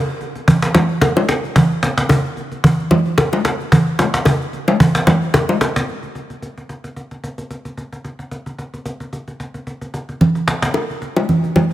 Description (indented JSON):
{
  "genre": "amapiano",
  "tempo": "111 BPM",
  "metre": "4/4",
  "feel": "swing 55% on 16ths",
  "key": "none",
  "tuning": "none",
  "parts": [
    { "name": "cajon", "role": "drums", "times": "0.1-11.7 s", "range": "none", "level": "-19 LUFS", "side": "equal", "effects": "none" },
    { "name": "congas and bongos", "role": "percussion", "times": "0.5-5.8, 10.2-11.7 s", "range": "none", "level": "-16 LUFS", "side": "equal", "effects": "none" }
  ],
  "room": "light reverb, studio reverb",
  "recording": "dense, heavily limited modern master",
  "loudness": "-14 LUFS",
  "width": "side -14 dB against mid",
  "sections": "0.0-5.9 A section; 5.9-11.7 B section",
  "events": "drop 0.0-5.9",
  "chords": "none"
}